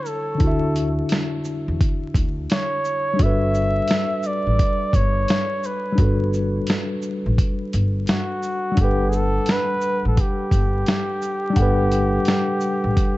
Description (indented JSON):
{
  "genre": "lo-fi hip hop",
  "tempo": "86 BPM",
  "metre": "4/4",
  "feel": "swing 62% on 16ths",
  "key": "G lydian",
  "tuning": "A4 = 440 Hz",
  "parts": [
    { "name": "trumpet with bucket mute", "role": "melody", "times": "0.0-13.2 s", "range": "F#4 to E5", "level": "-24 LUFS", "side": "equal", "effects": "low-pass filter, tape echo" },
    { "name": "mellow tine electric piano", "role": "accompaniment", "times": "0.0-13.2 s", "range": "D3 to F#5", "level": "-24 LUFS", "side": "left 1 dB", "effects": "medium stereo tremolo, low-pass filter" },
    { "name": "lo-fi sampler-style drum kit", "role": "drums", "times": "0.1-13.2 s", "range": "hi-hat, kick drum, shaker, snare drum", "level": "-21 LUFS", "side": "equal", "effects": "none" },
    { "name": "upright bass", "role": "bass", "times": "0.4-12.9 s", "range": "G1 to E2", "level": "-23 LUFS", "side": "equal", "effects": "none" }
  ],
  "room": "digital ambience",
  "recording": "dark, warm production, vinyl crackle, nothing above 7.9 kHz",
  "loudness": "-18 LUFS",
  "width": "side -18 dB against mid",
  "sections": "0.0-13.2 A section",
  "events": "none",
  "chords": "0.0 Dmaj9; 3.2 Gmaj9",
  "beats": "| 0.40 1.10 1.80 2.49 | 3.19 3.89 4.59 5.29 | 5.98 6.68 7.38 8.08 | 8.77 9.47 10.17 10.87 | 11.56 12.26 12.96"
}